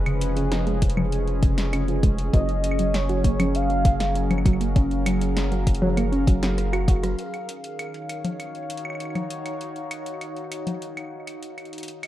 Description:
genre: IDM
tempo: 99 BPM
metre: 4/4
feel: straight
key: Eb minor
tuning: A4 = 440 Hz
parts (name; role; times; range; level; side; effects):
- warbly tape-like pad; sustained chords; 0.0-12.1 s; Eb3 to F5; -30 LUFS; equal; chorus, built-in reverb
- rubbery square bass; bass; 0.0-7.2 s; F1 to Gb1; -25 LUFS; equal; none
- warbly dusty pluck; arpeggios; 0.1-7.2 s; Db3 to Gb4; -28 LUFS; right 3 dB; chorus, dub echo
- electro analog drum machine; drums; 0.1-12.1 s; claves, congas, hi-hat, rim click, snare drum; -30 LUFS; left 2 dB; none
- electronic kick drum; drums; 0.8-7.0 s; none; -20 LUFS; equal; none
- warm velvety synth lead; melody; 2.3-4.5, 12.0-12.1 s; Db5 to F5; -30 LUFS; equal; chorus, dub echo
room: light reverb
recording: rough home demo mix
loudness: -21 LUFS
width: side -13 dB against mid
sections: 0.0-7.2 A section; 7.2-12.1 B section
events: drum fill 6.6-7.2; band accent 7.0-7.3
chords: 0.0 Db7/F; 2.3 Gbmaj7; 7.2 Ebm7

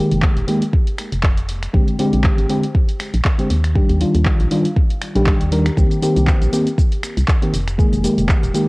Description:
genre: deep house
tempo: 119 BPM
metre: 4/4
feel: swing 55% on 16ths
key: unclear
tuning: A4 = 440 Hz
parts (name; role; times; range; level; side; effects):
- mellow FM electric piano; stabs; 0.0-8.7 s; D3 to Bb4; -19 LUFS; equal; chorus, sidechain pumping, cassette tape, tape echo
- organ-like FM bass; bass; 0.1-8.5 s; Eb1 to Eb2; -19 LUFS; equal; tube saturation, sidechain pumping
- punchy analog drum machine; drums; 0.1-8.7 s; cabasa, finger snaps, handclaps, hi-hat; -26 LUFS; equal; cassette tape
- electronic kick drum; drums; 0.2-8.4 s; none; -16 LUFS; equal; cassette tape
room: light reverb, digital ambience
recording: home recording on cassette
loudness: -14 LUFS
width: side -24 dB against mid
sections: 0.0-8.7 A section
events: none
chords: 0.0 Fm11; 1.7 Bb13; 3.8 Ebmaj9; 5.8 Cm7; 7.8 Fm11

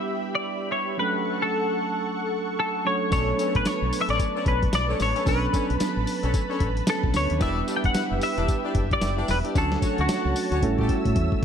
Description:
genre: R&B, new jack swing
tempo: 112 BPM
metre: 4/4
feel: swing 61% on 16ths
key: B minor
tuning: A4 = 439 Hz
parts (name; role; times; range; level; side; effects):
- semi-hollow electric guitar; melody; 0.0-11.4 s; F#4 to G5; -27 LUFS; left 2 dB; analog chorus
- bell-like tine electric piano; accompaniment; 0.0-11.4 s; F#3 to B4; -29 LUFS; right 5 dB; lush chorus
- lush unison pad; sustained chords; 0.0-11.4 s; G4 to E6; -32 LUFS; equal; chorus
- warm horn section; stabs; 3.1-11.0 s; A3 to D5; -33 LUFS; left 4 dB; none
- deep dub fingered electric bass; bass; 3.1-11.3 s; E1 to A2; -27 LUFS; left 1 dB; none
- dusty soul sampler-style drum kit; drums; 3.1-11.4 s; hi-hat, kick drum, snare drum, tambourine; -27 LUFS; left 1 dB; gated reverb
room: light reverb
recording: none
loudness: -22 LUFS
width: side -8 dB against mid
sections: 0.0-11.4 A section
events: drum fill 10.6-11.4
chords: 0.0 Em7; 1.0 Dmaj7; 3.1 Bm9; 7.4 Em7; 9.6 Dmaj7; 10.6 A7

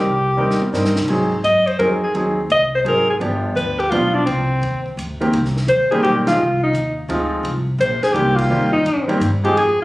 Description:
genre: jazz, small-group swing and bop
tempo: 170 BPM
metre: 3/4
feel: swing 66% on 8ths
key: C minor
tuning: A4 = 440 Hz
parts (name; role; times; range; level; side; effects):
- breathy alto saxophone; melody; 0.0-9.8 s; C4 to Eb5; -17 LUFS; equal; plate reverb
- clear grand piano; accompaniment; 0.0-9.6 s; Eb3 to Bb4; -19 LUFS; equal; none
- upright bass; bass; 0.0-9.8 s; G1 to Ab2; -23 LUFS; equal; none
- compact cocktail drum kit; drums; 0.5-9.7 s; crash cymbal, hi-hat, kick drum, ride cymbal, snare drum, toms; -30 LUFS; equal; none
room: moderate studio reverb, RT60 0.5 s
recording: recorded on a phone in the room, club reverb, compression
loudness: -15 LUFS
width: side -19 dB against mid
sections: 0.0-5.3 A section; 5.3-9.8 A section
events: drum fill 0.4-1.1; band accent 6.2, 8.3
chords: 0.0 Cm7; 1.1 Ab7; 3.2 G7; 4.3 Cm; 5.3 Cm7; 6.4 Fm7; 7.4 Cm7

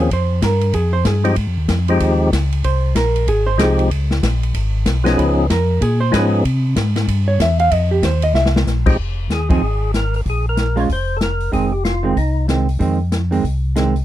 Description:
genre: soul jazz organ trio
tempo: 189 BPM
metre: 4/4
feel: swing 61% on 8ths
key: F minor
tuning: A4 = 442 Hz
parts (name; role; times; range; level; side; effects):
- percussive tonewheel organ; melody; 0.0-6.4, 8.9-12.5 s; F3 to Db5; -18 LUFS; left 1 dB; slow rotary speaker, overdrive
- mellow tonewheel organ; bass; 0.0-14.0 s; F1 to C3; -17 LUFS; equal; chorus vibrato, slow rotary speaker
- vintage hollow-body jazz guitar; accompaniment; 0.1-13.9 s; Eb3 to F5; -19 LUFS; right 3 dB; none
- open jazz drum kit; drums; 0.1-14.0 s; crash cymbal, hi-hat, kick drum, ride cymbal, snare drum; -22 LUFS; left 1 dB; none
room: little or no reverb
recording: dry, close 1970s-style studio recording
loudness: -15 LUFS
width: side -13 dB against mid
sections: 0.0-9.0 A section; 9.0-14.0 B section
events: hollow-body jazz guitar solo 0.0-9.0; drum fill 8.3-8.7; band accent 9.5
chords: 0.1 Fm7; 3.9 Db7; 6.4 C; 7.7 Eb69; 8.3 C5; 9.0 Fm7; 10.3 Bb7(no3); 11.5 Fm7

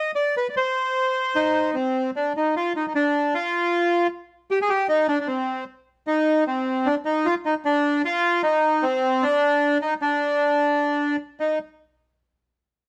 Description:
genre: tango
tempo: 152 BPM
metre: 3/4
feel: rubato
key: unclear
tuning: A4 = 437 Hz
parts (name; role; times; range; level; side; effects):
- bandoneon; solo; 0.0-11.6 s; C4 to Eb5; -22 LUFS; equal; none
room: moderate studio reverb, RT60 0.8 s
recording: none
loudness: -22 LUFS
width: mono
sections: 0.0-1.9 A section; 1.9-11.4 B section; 11.4-12.6 C section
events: none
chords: none

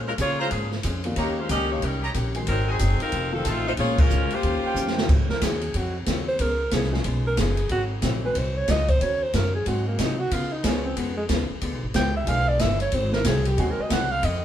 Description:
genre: jazz, big band swing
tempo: 184 BPM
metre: 4/4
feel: swing 62% on 8ths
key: Ab mixolydian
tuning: A4 = 440 Hz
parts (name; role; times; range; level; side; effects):
- archtop guitar, miked and amplified; accompaniment; 0.0-14.4 s; F2 to C5; -33 LUFS; left 3 dB; none
- warm upright piano; accompaniment; 0.0-14.1 s; Eb3 to Ab4; -33 LUFS; left 2 dB; none
- upright bass; bass; 0.0-14.4 s; F1 to Db3; -26 LUFS; equal; none
- edgy saxophone section; melody; 0.1-5.0 s; F3 to Eb5; -25 LUFS; left 2 dB; none
- open jazz drum kit; drums; 0.2-14.3 s; crash cymbal, hi-hat, kick drum, ride cymbal, snare drum; -27 LUFS; equal; none
- clear trumpet section; stabs; 0.4-5.1 s; Db4 to Bb5; -32 LUFS; right 4 dB; none
- clear alto saxophone; melody; 5.3-14.4 s; Ab3 to G5; -26 LUFS; right 1 dB; none
room: moderate studio reverb, RT60 0.8 s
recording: band playing live in one room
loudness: -21 LUFS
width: side -11 dB against mid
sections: 0.0-5.1 A section; 5.1-14.4 B section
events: band accent 3.9; drum fill 4.8-5.1; alto saxophone solo 5.1-14.4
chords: 0.0 Bbm7; 1.2 Eb7; 2.5 Ab7; 3.1 F7; 3.8 Bbm7; 4.4 Eb13; 5.1 Ab7; 6.4 Db7; 7.7 Ab7; 9.0 Ebm7; 9.7 Ab7; 10.3 Db7; 11.6 Ddim7; 12.9 Ab7

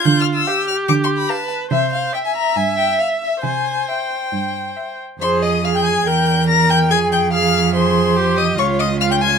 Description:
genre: quick classical-period movement for string quartet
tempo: 142 BPM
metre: 4/4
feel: rubato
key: F minor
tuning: A4 = 440 Hz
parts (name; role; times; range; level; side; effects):
- rich violin; melody; 0.0-9.4 s; E5 to Bb6; -20 LUFS; left 7 dB; none
- clear viola; accompaniment; 0.0-9.4 s; F4 to E5; -21 LUFS; right 3 dB; none
- rich cello; bass; 0.1-9.4 s; Db2 to D3; -19 LUFS; right 4 dB; none
- rich violin; second line; 0.5-9.4 s; C5 to Bb5; -20 LUFS; left 2 dB; none
room: moderate studio reverb, RT60 0.5 s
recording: minimal, uncompressed stereo recording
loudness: -15 LUFS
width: side -6 dB against mid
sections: 0.0-5.2 A section; 5.2-9.4 B section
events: none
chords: 0.1 G7/D; 1.7 C; 5.2 Fm; 6.1 Edim; 6.9 Fm; 8.6 Db

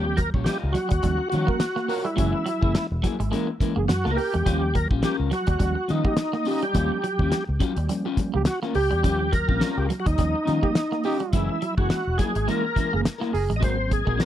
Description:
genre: funk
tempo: 105 BPM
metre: 4/4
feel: swing 56% on 16ths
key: Eb mixolydian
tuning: A4 = 440 Hz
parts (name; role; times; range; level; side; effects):
- overdriven tonewheel organ; melody; 0.0-14.3 s; Eb4 to Eb5; -27 LUFS; equal; chorus vibrato, slow rotary speaker, tape echo
- electric guitar at the edge of break-up; accompaniment; 0.0-14.3 s; Bb3 to Eb5; -31 LUFS; left 8 dB; none
- clean electric guitar; riff; 0.0-14.2 s; Gb3 to Bb3; -32 LUFS; right 4 dB; tremolo
- mellow tine electric piano; stabs; 0.0-14.0 s; Eb3 to Eb4; -31 LUFS; right 2 dB; medium stereo tremolo
- vintage muted fingered electric bass; bass; 0.0-14.2 s; Fb1 to Eb3; -26 LUFS; equal; none
- damped 70s drum kit; drums; 0.2-14.3 s; hi-hat, kick drum, snare drum; -25 LUFS; equal; none
- breathy trombone; second line; 1.5-13.5 s; G4 to Bb4; -28 LUFS; right 8 dB; none
room: small room ambience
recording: dry, close 1970s-style studio recording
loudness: -21 LUFS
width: side -11 dB against mid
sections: 0.0-13.6 A section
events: none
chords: 0.0 Eb9; 2.2 Gb9; 4.5 Eb9; 11.3 Gb9; 13.6 Ab9

